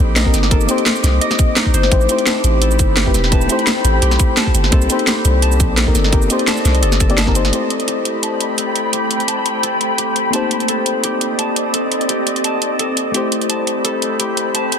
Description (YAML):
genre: liquid drum and bass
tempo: 171 BPM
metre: 4/4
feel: swing 53% on 16ths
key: A minor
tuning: A4 = 438 Hz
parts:
  - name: mellow FM electric piano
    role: accompaniment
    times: 0.0-14.8 s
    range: A3 to D5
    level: -21 LUFS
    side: left 2 dB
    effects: chorus, tape echo
  - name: glassy FM pad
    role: sustained chords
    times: 0.0-14.8 s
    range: A3 to D6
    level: -21 LUFS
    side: left 1 dB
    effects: ensemble chorus, built-in reverb, sidechain pumping
  - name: concert harp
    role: arpeggios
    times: 0.0-14.8 s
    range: Eb4 to A5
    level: -23 LUFS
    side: left 1 dB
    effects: low-pass filter, tape echo
  - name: long sustained 808-style bass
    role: bass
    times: 0.0-7.5 s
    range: E1 to C2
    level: -16 LUFS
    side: equal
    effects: none
  - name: garage drum kit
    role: drums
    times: 0.2-14.8 s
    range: hi-hat, shaker, snare drum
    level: -19 LUFS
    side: right 1 dB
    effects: none
  - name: electronic kick drum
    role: drums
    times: 0.3-7.3 s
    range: none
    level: -16 LUFS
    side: equal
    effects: none
room: light reverb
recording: dense, heavily limited modern master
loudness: -13 LUFS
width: side -7 dB against mid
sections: 0.0-7.5 A section; 7.5-14.8 B section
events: drop 0.0-7.5; filter sweep on harp 7.5-14.8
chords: 0.0 Cm7; 1.9 Am7; 4.7 Cm7; 7.5 Am7; 10.3 Cm7; 13.1 Am7